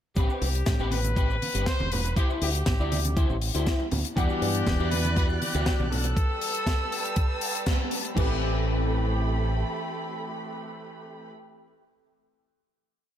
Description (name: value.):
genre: nu-disco, nu disco.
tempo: 120 BPM.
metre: 4/4.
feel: straight.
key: A dorian.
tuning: A4 = 440 Hz.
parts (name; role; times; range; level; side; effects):
clear trumpet section; melody; 0.2-7.6 s; G4 to C5; -33 LUFS; left 2 dB; ping-pong delay.
electric guitar at the edge of break-up; riff; 0.2-11.3 s; C4 to D5; -34 LUFS; left 2 dB; ensemble chorus, ping-pong delay.
fingered electric bass with an envelope filter; bass; 0.2-9.6 s; E1 to A2; -27 LUFS; equal; none.
electronic kick drum; drums; 0.2-8.3 s; none; -25 LUFS; equal; none.
tight funk drum kit; drums; 0.2-8.3 s; crash cymbal, hi-hat, snare drum; -32 LUFS; left 3 dB; none.
cabasa, bongos and congas; percussion; 0.2-6.1 s; none; -36 LUFS; right 2 dB; none.
dark grand piano; accompaniment; 4.2-11.3 s; E3 to F#5; -32 LUFS; equal; lush chorus, sidechain pumping, ping-pong delay.
dark studio violin section; sustained chords; 4.2-11.3 s; G3 to F#6; -34 LUFS; right 2 dB; sidechain pumping.
room: light reverb, studio reverb.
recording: none.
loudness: -24 LUFS.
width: side -10 dB against mid.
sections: 0.2-8.2 groove; 8.2-12.2 final chord.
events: band accent 7.7.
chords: 0.2 Am9; 2.2 D9sus4; 4.2 Em9; 6.2 G69; 8.2 Am9.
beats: | 0.17 0.67 1.17 1.67 | 2.17 2.67 3.17 3.67 | 4.17 4.67 5.17 5.67 | 6.17 6.67 7.17 7.67 | 8.17 8.67 9.17 9.67 | 10.17 10.67 11.17.